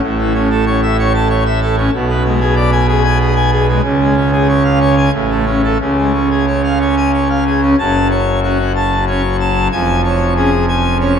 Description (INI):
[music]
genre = classical, organ toccata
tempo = 93 BPM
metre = 3/4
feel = straight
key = F# minor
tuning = A4 = 440 Hz
[part]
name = pipe organ, full organ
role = solo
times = 0.0-11.2 s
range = E#1 to A5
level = -11 LUFS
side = equal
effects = none
[sound]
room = wet huge ambient reverb, RT60 7.7 s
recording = in a vast, echoing space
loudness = -11 LUFS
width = side -7 dB against mid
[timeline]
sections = 0.0-7.8 A section; 7.8-11.2 B section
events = none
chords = 0.0 A; 1.9 G#dim/B; 3.8 C#; 5.1 A; 5.8 C#; 7.8 F#m; 9.7 C#/E#